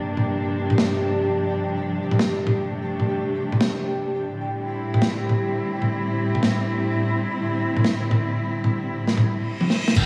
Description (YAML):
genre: half-time drum and bass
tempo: 170 BPM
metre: 4/4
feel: swing 55% on 16ths, half-time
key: unclear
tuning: A4 = 440 Hz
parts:
  - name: warm studio cello section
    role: sustained chords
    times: 0.0-10.0 s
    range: G2 to E4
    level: -27 LUFS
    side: equal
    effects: sidechain pumping, low-pass filter
  - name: pulsing gated texture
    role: texture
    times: 0.0-9.3 s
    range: G4 to G5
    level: -32 LUFS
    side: equal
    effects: chorus, built-in reverb
  - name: crunchy breakbeat drum kit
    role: drums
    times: 0.2-10.0 s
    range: crash cymbal, snare drum, toms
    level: -25 LUFS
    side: equal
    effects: none
  - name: reverse cymbal and impact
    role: sound effects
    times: 9.4-10.1 s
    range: none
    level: -32 LUFS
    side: equal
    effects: none
  - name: saturated sub bass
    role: bass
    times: 10.0-10.1 s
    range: G1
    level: -26 LUFS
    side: equal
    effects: none
  - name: electronic kick drum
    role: drums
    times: 10.0 s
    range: none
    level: -20 LUFS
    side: equal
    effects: overdrive
room: wet lush hall reverb, RT60 1.7 s, small room ambience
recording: dreamy mix soaked in reverb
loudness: -23 LUFS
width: mono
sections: 0.0-10.0 A section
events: reverse cymbal 9.4-10.0; drum fill 9.6-10.0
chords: 0.0 Gm; 4.3 Am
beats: | 0.08 0.43 0.78 1.14 | 1.49 1.84 2.20 2.55 | 2.90 3.25 3.61 3.96 | 4.31 4.67 5.02 5.37 | 5.72 6.08 6.43 6.78 | 7.14 7.49 7.84 8.20 | 8.55 8.90 9.25 9.61 | 9.96